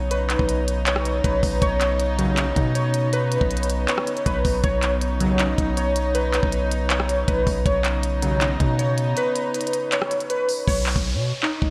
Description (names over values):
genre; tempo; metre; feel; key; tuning
hip hop, trap; 159 BPM; 4/4; half-time; B major; A4 = 443 Hz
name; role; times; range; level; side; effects
dark studio string section; sustained chords; 0.0-10.6 s; C#3 to D#4; -33 LUFS; equal; none
warbly lo-fi synth keys; arpeggios; 0.0-11.7 s; D#4 to C#5; -26 LUFS; equal; chorus, tremolo, low-pass filter, delay
long sustained 808-style bass; bass; 0.0-11.7 s; B1 to B2; -26 LUFS; equal; none
trap drum kit; drums; 0.1-11.7 s; handclaps, hi-hat, kick drum, rim click; -27 LUFS; equal; none
big bright polysynth; stabs; 2.2-2.5, 5.2-5.5, 8.2-8.5 s; D#2 to F#3; -30 LUFS; equal; delay
downlifter; sound effects; 10.7-11.7 s; none; -32 LUFS; equal; none
room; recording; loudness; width
light reverb; none; -22 LUFS; mono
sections
0.0-10.7 A section; 10.7-11.7 B section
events
kick muted 9.2-10.7; hi-hats muted 10.7-11.7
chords
0.0 Badd9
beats
| 0.11 0.49 0.86 1.24 | 1.62 2.00 2.37 2.75 | 3.13 3.51 3.88 4.26 | 4.64 5.02 5.39 5.77 | 6.15 6.53 6.90 7.28 | 7.66 8.03 8.41 8.79 | 9.17 9.54 9.92 10.30 | 10.68 11.05 11.43